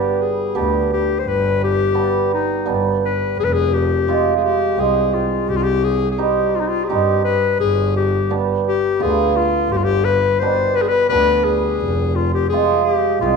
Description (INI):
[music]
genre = klezmer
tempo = 85 BPM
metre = 3/4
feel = straight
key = G phrygian dominant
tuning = A4 = 437 Hz
[part]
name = warm clarinet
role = melody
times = 0.0-13.4 s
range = Eb4 to C5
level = -18 LUFS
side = left 9 dB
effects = none
[part]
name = cimbalom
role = accompaniment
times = 0.0-13.4 s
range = B2 to G5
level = -20 LUFS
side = right 10 dB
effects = none
[part]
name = muted double bass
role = bass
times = 0.6-13.4 s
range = F1 to G2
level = -22 LUFS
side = right 1 dB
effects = none
[sound]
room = moderate echo chamber reverb, RT60 1.8 s, small room ambience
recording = 1960s-style stereo with parts hard left and right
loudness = -15 LUFS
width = side -5 dB against mid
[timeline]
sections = 0.0-13.4 A section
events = none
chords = 0.0 G; 3.4 Fm; 5.5 Cm; 7.6 G; 11.8 Fm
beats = 0.56 | 1.26 1.97 2.67 | 3.38 4.08 4.78 | 5.49 6.19 6.89 | 7.59 8.30 9.00 | 9.70 10.40 11.10 | 11.80 12.51 13.21